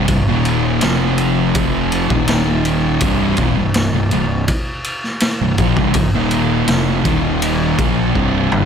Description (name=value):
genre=stoner and doom metal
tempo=82 BPM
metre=4/4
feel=straight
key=C minor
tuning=A4 = 440 Hz
part: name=thick fuzz guitar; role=riff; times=0.0-8.7 s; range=C2 to Bb3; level=-19 LUFS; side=left 10 dB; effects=distortion
part: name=thick fuzz guitar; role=riff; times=0.0-8.7 s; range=C2 to Bb3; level=-18 LUFS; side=right 9 dB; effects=distortion
part: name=fuzz fingered electric bass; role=bass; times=0.0-8.7 s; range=C1 to Bb1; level=-22 LUFS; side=equal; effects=overdrive
part: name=raw garage drum kit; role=drums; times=0.1-8.7 s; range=kick drum, ride cymbal, snare drum, toms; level=-19 LUFS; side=equal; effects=none
room=light reverb, small room ambience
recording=none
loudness=-14 LUFS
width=side -7 dB against mid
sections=0.0-8.7 A section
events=drum fill 8.2-8.7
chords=0.0 Cm; 0.8 F5; 2.1 Eb5; 3.0 Cm; 7.1 Eb5; 7.8 C5